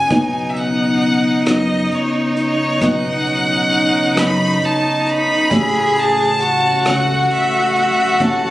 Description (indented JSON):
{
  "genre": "acoustic folk-pop ballad",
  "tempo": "45 BPM (dotted quarters)",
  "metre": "6/8",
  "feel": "straight",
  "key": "unclear",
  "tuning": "A4 = 439 Hz",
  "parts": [
    { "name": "bright violin", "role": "melody", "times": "0.0-8.5 s", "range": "C#5 to B5", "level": "-19 LUFS", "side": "equal", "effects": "plate reverb" },
    { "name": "felt-muted upright piano", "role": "accompaniment", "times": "0.0-8.5 s", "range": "A1 to D#5", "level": "-22 LUFS", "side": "left 1 dB", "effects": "none" },
    { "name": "warm chamber string section", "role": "sustained chords", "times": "0.0-8.5 s", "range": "C#3 to F#4", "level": "-23 LUFS", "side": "left 2 dB", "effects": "none" },
    { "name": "rich cello", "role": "second line", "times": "0.1-8.5 s", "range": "D#4 to G#4", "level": "-18 LUFS", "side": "equal", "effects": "none" },
    { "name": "fingered electric bass", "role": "bass", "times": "0.1-8.5 s", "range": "A1 to F#2", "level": "-25 LUFS", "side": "equal", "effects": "none" },
    { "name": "vintage brush drum kit", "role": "drums", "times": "0.1-8.4 s", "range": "hi-hat, kick drum, rim click", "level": "-25 LUFS", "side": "equal", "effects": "none" }
  ],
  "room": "moderate studio reverb, RT60 0.7 s",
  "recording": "recorded on a phone in the room, club reverb",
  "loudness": "-14 LUFS",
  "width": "side -15 dB against mid",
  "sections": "0.1-8.5 A section",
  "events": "none",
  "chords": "0.1 Badd9; 5.5 F#m/A"
}